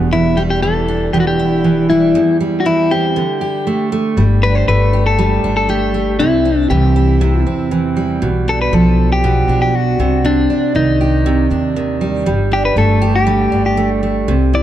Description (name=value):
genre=acoustic pop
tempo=119 BPM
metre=4/4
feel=straight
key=G major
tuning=A4 = 440 Hz
part: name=picked steel-string acoustic guitar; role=accompaniment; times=0.0-14.6 s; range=E2 to G4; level=-16 LUFS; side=right 4 dB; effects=none
part: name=upright bass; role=bass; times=0.0-14.6 s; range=E1 to Eb2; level=-16 LUFS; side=left 1 dB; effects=none
part: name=clean electric guitar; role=melody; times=0.1-14.6 s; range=D4 to D5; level=-17 LUFS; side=left 3 dB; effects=none
room=light reverb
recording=dark, warm production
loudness=-12 LUFS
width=side -12 dB against mid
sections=0.0-4.2 A section; 4.2-14.6 B section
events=none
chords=0.0 Em7; 2.1 C/E; 3.2 Dsus4; 4.2 Gsus2; 6.2 C; 8.2 G7/B; 10.0 Cmadd9; 12.3 Gsus2